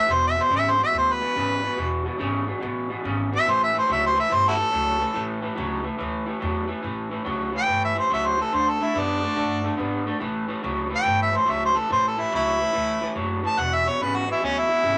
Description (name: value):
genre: electric blues shuffle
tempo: 142 BPM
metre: 4/4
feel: swing 66% on 8ths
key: A major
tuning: A4 = 441 Hz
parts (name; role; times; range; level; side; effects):
- warm harmonica; melody; 0.0-15.0 s; C#4 to A5; -23 LUFS; equal; overdrive
- electric guitar through a small old amp; riff; 0.0-15.0 s; E2 to B3; -29 LUFS; equal; none
- upright bass; bass; 0.1-15.0 s; E1 to G2; -35 LUFS; equal; none
room: light reverb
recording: none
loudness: -24 LUFS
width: mono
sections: 0.0-6.8 A section; 6.8-15.0 A section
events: harmonica solo 0.0-6.8, 6.8-15.0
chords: 0.1 E; 3.5 A; 6.8 A7; 8.5 D; 10.2 A; 13.6 E7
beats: | 0.09 0.51 0.93 1.35 | 1.78 2.20 2.62 3.04 | 3.46 3.89 4.31 4.73 | 5.15 5.58 6.00 6.42 | 6.84 7.26 7.68 8.10 | 8.53 8.95 9.37 9.79 | 10.21 10.63 11.05 11.47 | 11.89 12.32 12.74 13.16 | 13.58 14.00 14.42 14.84